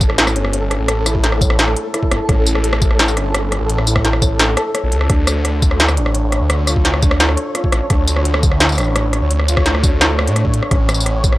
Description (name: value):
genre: half-time drum and bass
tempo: 171 BPM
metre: 4/4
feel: half-time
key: unclear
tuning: A4 = 439 Hz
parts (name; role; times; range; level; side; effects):
- phased detuned saw bass; bass; 0.0-11.4 s; G1 to A2; -17 LUFS; equal; phaser, tube saturation
- electronic kick drum; drums; 0.0-11.3 s; none; -16 LUFS; equal; overdrive
- industrial drum kit; drums; 0.0-11.4 s; hi-hat, rim click, snare drum, tambourine; -17 LUFS; equal; none
- flickering grainy texture; texture; 0.0-11.4 s; A4 to C#5; -25 LUFS; equal; built-in reverb
- felt-muted upright piano; arpeggios; 0.4-10.9 s; C#4 to C#5; -24 LUFS; equal; tape echo
room: little or no reverb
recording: dry, gritty hardware recording, cassette tape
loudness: -13 LUFS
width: side -17 dB against mid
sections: 0.0-11.4 A section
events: break 4.7-5.1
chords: 0.0 A; 5.1 Dm; 10.7 A